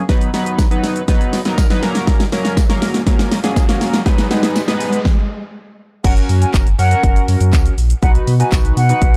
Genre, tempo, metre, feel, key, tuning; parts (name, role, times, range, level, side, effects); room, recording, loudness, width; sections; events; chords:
dance-pop; 121 BPM; 4/4; straight; A4 = 441 Hz
chorused polysynth; accompaniment; 0.0-9.2 s; F#3 to B4; -22 LUFS; equal; sidechain pumping, low-pass filter
riser; sound effects; 0.9-5.1 s; -30 LUFS; equal
pop drum kit; drums; 0.1-9.2 s; crash cymbal, handclaps, hi-hat, kick drum, shaker, snare drum; -17 LUFS; equal
tambourine; percussion; 0.6-8.6 s; -36 LUFS; equal
concert flute; melody; 6.0-9.2 s; F#5 to G#5; -23 LUFS; equal; sidechain pumping, analog delay
sub bass with octave; bass; 6.0-9.2 s; F#1 to B2; -16 LUFS; equal; tube saturation, sidechain pumping
digital ambience; dry, gritty hardware recording, transformer saturation; -15 LUFS; mono
0.0-6.0 A section; 6.0-9.2 B section
build-up 0.0-6.0; drum fill 0.0-5.1; riser 0.9-6.0; stop 5.1-6.0; drop 6.0-9.2
0.1 B; 1.8 F#; 4.1 G#m; 5.1 N.C.; 6.0 F#; 8.0 B